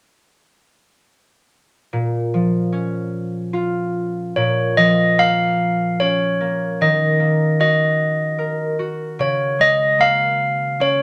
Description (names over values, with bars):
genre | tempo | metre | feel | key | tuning
children's music, lullaby | 75 BPM | 3/4 | rubato | Bb minor | A4 = 441 Hz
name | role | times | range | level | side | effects
concert harp | accompaniment | 1.9-11.0 s | Bb2 to Bb4 | -23 LUFS | equal | none
handbells | melody | 4.4-11.0 s | Db5 to F5 | -19 LUFS | equal | none
room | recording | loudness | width
moderate studio reverb, RT60 0.7 s | none | -19 LUFS | mono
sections
1.9-4.4 A section; 4.4-11.0 B section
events
none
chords
1.9 Bbm; 6.8 Ebm; 9.2 Bbm7/Db